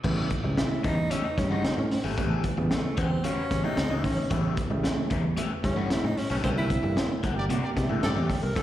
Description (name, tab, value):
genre	funk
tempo	113 BPM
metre	4/4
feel	straight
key	A mixolydian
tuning	A4 = 440 Hz
part	overdriven electric guitar	accompaniment	0.0-8.6 s	C#4 to F#5	-35 LUFS	left 7 dB	phaser, slapback echo
part	mellow electric guitar	riff	0.0-8.6 s	G3 to C#4	-37 LUFS	right 5 dB	none
part	overdriven clav	stabs	0.0-8.6 s	C#3 to C#4	-34 LUFS	right 2 dB	slapback echo
part	fingered electric bass	bass	0.0-8.6 s	G1 to C3	-29 LUFS	equal	none
part	crunchy breakbeat drum kit	drums	0.0-8.6 s	crash cymbal, hi-hat, kick drum, snare drum	-30 LUFS	equal	none
part	breathy tenor saxophone	melody	0.6-8.6 s	A3 to Bb4	-32 LUFS	equal	slapback echo
part	clear horn section	second line	7.4-8.2 s	G4 to D5	-35 LUFS	right 1 dB	slapback echo
room	light reverb, small room reverb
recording	live gig heard through the venue's PA, recital hall reverb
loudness	-24 LUFS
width	side -13 dB against mid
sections	0.0-8.6 A section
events	tenor saxophone solo 0.0-8.6; band accent 6.4-8.6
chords	0.0 A9; 6.4 C9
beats	| 0.04 0.58 1.11 1.65 | 2.18 2.71 3.24 3.77 | 4.31 4.84 5.37 5.90 | 6.44 6.97 7.50 8.03 | 8.56